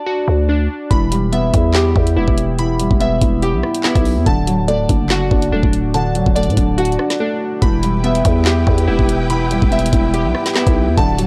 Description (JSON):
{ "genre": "hip hop, drill", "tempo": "143 BPM", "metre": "4/4", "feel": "half-time", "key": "E minor", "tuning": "A4 = 441 Hz", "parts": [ { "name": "glassy digital keys", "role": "arpeggios", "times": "0.0-11.3 s", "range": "D4 to B5", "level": "-24 LUFS", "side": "equal", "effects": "chorus, low-pass filter, tape echo" }, { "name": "growling 808-style bass", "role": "bass", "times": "0.3-11.3 s", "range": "D1 to A2", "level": "-20 LUFS", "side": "equal", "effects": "none" }, { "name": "felt-muted upright piano", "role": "accompaniment", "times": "0.9-11.3 s", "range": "D3 to G4", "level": "-22 LUFS", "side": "equal", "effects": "low-pass filter" }, { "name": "drill drum kit", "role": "drums", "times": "0.9-11.3 s", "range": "handclaps, hi-hat, kick drum, rim click, snare drum", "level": "-19 LUFS", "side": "equal", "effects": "none" }, { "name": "dark symphonic string section", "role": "sustained chords", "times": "7.6-11.3 s", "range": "E4 to A5", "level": "-27 LUFS", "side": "equal", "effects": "none" } ], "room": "little or no reverb", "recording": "dry, gritty hardware recording, cassette tape", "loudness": "-16 LUFS", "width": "mono", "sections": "0.0-7.6 A section; 7.6-11.3 B section", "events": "break 0.0-0.9, 7.2-7.6", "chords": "0.0 D; 0.9 Em; 4.3 D; 7.6 Em", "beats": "0.07 0.49 | 0.91 1.33 1.75 2.17 | 2.58 3.00 3.42 3.84 | 4.26 4.68 5.10 5.52 | 5.94 6.36 6.78 7.20 | 7.62 8.04 8.46 8.88 | 9.30 9.72 10.14 10.56 | 10.98" }